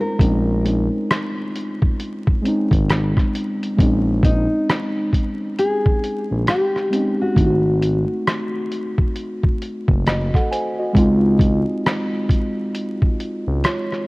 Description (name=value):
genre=lo-fi hip hop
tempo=67 BPM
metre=4/4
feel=swing 62% on 16ths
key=Bb minor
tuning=A4 = 436 Hz
part: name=nylon-string guitar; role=melody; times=0.0-9.9 s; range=Eb4 to Bb4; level=-23 LUFS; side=left 1 dB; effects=none
part: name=muted felt-like synth keys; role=accompaniment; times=0.0-14.1 s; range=Ab3 to Ab5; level=-22 LUFS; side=equal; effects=chorus
part: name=smooth gliding synth bass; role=bass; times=0.2-13.6 s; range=Gb1 to Db2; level=-19 LUFS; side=equal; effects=none
part: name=lo-fi sampler-style drum kit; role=drums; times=0.2-14.0 s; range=hi-hat, kick drum, rim click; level=-19 LUFS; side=equal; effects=vintage 12-bit sampler grit
room=light reverb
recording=worn, warbling old tape, cassette tape, vinyl crackle, warbly pitch drift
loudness=-17 LUFS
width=side -23 dB against mid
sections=0.0-3.8 A section; 3.8-14.1 B section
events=none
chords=0.0 Bbm11; 7.4 Ab7b9; 10.9 Dbmaj9